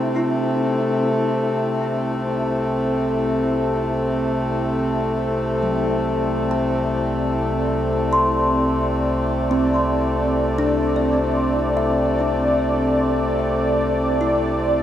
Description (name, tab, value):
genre	ambient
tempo	56 BPM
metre	4/4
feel	straight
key	C lydian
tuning	A4 = 441 Hz
part	warm analog pad	sustained chords	0.0-14.8 s	C4 to D5	-24 LUFS	equal	chorus
part	kalimba	arpeggios	0.0-14.8 s	F#3 to C6	-26 LUFS	equal	diffuse ambient delay
part	deep rumbling drone	bass	2.1-14.8 s	C2	-30 LUFS	equal	built-in reverb
part	pedal harmonium	drone	0.0-14.8 s	C3 to A3	-21 LUFS	left 1 dB	none
room	wet huge ambient reverb, RT60 8.0 s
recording	dreamy mix soaked in reverb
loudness	-18 LUFS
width	side -11 dB against mid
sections	0.0-14.8 A section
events	fade-in on analog synth pad 0.0-14.8; fade-in on kalimba 0.0-14.8; fade-in on synth drone 0.0-14.8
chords	0.0 C69